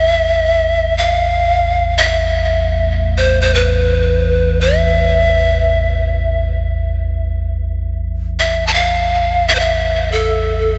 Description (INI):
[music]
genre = world meditative, free-time meditation music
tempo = free time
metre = none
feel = none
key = unclear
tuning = A4 = 440 Hz
[part]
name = breathy pan flute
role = melody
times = 0.0-10.8 s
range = A4 to A5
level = -17 LUFS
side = equal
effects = delay
[part]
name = deep rumbling drone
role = drone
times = 0.0-10.8 s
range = A1 to E2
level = -20 LUFS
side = equal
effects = built-in reverb, phaser, lush chorus
[sound]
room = wet huge ambient reverb, RT60 4.9 s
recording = dark, warm production, nothing above 7.9 kHz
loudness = -15 LUFS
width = mono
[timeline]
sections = 0.0-10.8 A section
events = none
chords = none